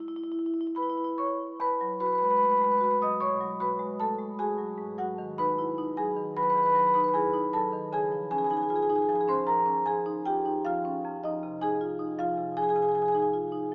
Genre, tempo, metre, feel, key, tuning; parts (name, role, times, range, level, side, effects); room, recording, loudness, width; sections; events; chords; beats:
classical, contemporary piece for solo marimba; 77 BPM; 4/4; rubato; E major; A4 = 440 Hz
marimba with medium hard mallets; solo; 0.0-13.7 s; E2 to D#6; -25 LUFS; equal
wet cathedral reverb, RT60 6.4 s; recorded in a church or concert hall, small speaker sound; -25 LUFS; side -35 dB against mid
0.0-1.6 A section; 1.6-13.7 A section
0.0 Eadd9; 4.8 G#m7; 7.9 C#add9; 11.0 Fm7
0.76 | 1.60 2.41 3.21 4.00 | 4.79 5.58 6.36 7.14 | 7.91 8.69 9.47 10.26 | 11.04 11.80 12.56 13.32